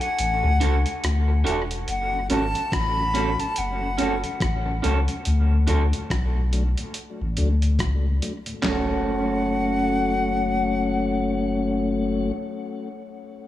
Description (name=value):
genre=dub reggae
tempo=71 BPM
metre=4/4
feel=swing 59% on 16ths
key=F# minor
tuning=A4 = 440 Hz
part: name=bright silver concert flute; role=melody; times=0.0-12.3 s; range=F#5 to B5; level=-28 LUFS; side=left 2 dB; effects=dub echo
part: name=dusty soul sampler-style drum kit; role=drums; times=0.0-8.9 s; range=handclaps, hi-hat, kick drum, rim click, snare drum, toms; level=-30 LUFS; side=equal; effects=none
part: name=warm sub bass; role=bass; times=0.2-12.3 s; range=E1 to D2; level=-23 LUFS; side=left 1 dB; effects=none
part: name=electric guitar through a small old amp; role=accompaniment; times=0.4-12.4 s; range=C#4 to A4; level=-28 LUFS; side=right 4 dB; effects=wide subtle chorus, dub echo
part: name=mellow tonewheel organ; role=accompaniment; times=2.1-12.3 s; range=D2 to D4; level=-27 LUFS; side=left 2 dB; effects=slow rotary speaker, dub echo
room=light reverb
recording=echo-heavy mix, small room ambience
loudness=-21 LUFS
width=side -13 dB against mid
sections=0.0-1.9 A section; 1.9-8.6 B section; 8.6-12.0 C section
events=break 0.0-1.9; kick muted 0.2-1.9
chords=0.0 D; 1.9 F#m; 5.3 D; 8.6 F#m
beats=0.18 1.03 | 1.87 2.72 3.57 4.41 | 5.26 6.11 6.96 7.80 | 8.65 9.49 10.34 11.19